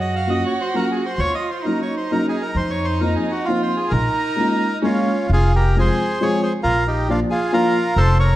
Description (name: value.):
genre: musette waltz.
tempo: 132 BPM.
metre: 3/4.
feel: straight.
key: Bb minor, F minor from 5.3 s.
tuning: A4 = 440 Hz.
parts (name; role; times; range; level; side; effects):
bandoneon; melody; 0.0-8.4 s; Db4 to F5; -22 LUFS; right 1 dB; none.
dark violin; second line; 0.0-5.3 s; Db4 to Gb4; -25 LUFS; right 3 dB; none.
upright bass; bass; 0.0-8.4 s; F1 to Gb2; -19 LUFS; equal; none.
dark upright piano; accompaniment; 0.3-7.8 s; F3 to F4; -22 LUFS; left 1 dB; none.
room: moderate recital hall reverb, RT60 1.5 s.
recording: dark, warm production.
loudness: -17 LUFS.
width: side -14 dB against mid.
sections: 0.0-5.3 A section; 5.3-8.4 B section.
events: none.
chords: 0.0 Gbmaj7; 1.2 Ebm7; 2.6 F7sus4; 3.9 Bbm7; 5.3 Fm; 6.6 Bb.